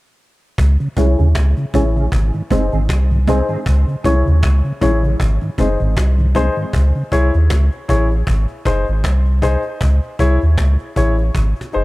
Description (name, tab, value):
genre	dub reggae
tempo	78 BPM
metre	4/4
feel	swing 55% on 16ths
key	C# harmonic minor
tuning	A4 = 441 Hz
part	soft dub sub bass	bass	0.6-11.8 s	F#1 to D#2	-14 LUFS	equal	none
part	cajon	drums	0.6-11.8 s	none	-22 LUFS	equal	none
part	mellow tonewheel organ	accompaniment	0.8-7.0 s	G#2 to E4	-23 LUFS	equal	slow rotary speaker, low-pass filter, dub echo
part	clean electric guitar	accompaniment	1.0-3.6 s	B#3 to G#4	-26 LUFS	right 6 dB	ensemble chorus, low-pass filter, dub echo
part	warm upright piano	stabs	1.0-11.8 s	D#4 to C#5	-21 LUFS	left 3 dB	low-pass filter, dub echo
room	light reverb, studio reverb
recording	dark, warm production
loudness	-13 LUFS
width	side -19 dB against mid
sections	0.6-11.8 A section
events	filter sweep 0.6-11.8; drum fill 11.3-11.8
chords	0.6 C#m; 2.1 G#; 3.7 C#m; 5.2 G#; 6.7 C#m; 8.3 G#; 9.8 C#m